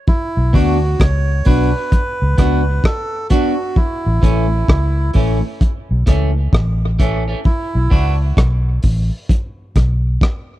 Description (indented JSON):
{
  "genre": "dub reggae",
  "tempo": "65 BPM",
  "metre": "4/4",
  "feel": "swing 63% on 16ths",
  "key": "B minor",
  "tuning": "A4 = 441 Hz",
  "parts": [
    { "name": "melodica", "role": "melody", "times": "0.1-7.9 s", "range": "E4 to C#5", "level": "-23 LUFS", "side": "right 3 dB", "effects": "tape echo" },
    { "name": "crunchy breakbeat drum kit", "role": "drums", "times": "0.1-10.5 s", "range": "hi-hat, kick drum, rim click", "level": "-14 LUFS", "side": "equal", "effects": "none" },
    { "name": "vintage muted fingered electric bass", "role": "bass", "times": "0.4-10.2 s", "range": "A1 to D2", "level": "-16 LUFS", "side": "equal", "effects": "none" },
    { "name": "clean electric guitar", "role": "accompaniment", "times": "0.5-8.1 s", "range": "E3 to F#4", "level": "-22 LUFS", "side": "equal", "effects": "high-pass filter, tape echo" }
  ],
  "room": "small room ambience",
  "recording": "dry, close 1970s-style studio recording",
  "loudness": "-13 LUFS",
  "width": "side -15 dB against mid",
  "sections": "0.1-10.6 A section",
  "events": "none",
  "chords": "0.1 Bm; 3.8 A; 7.5 N.C."
}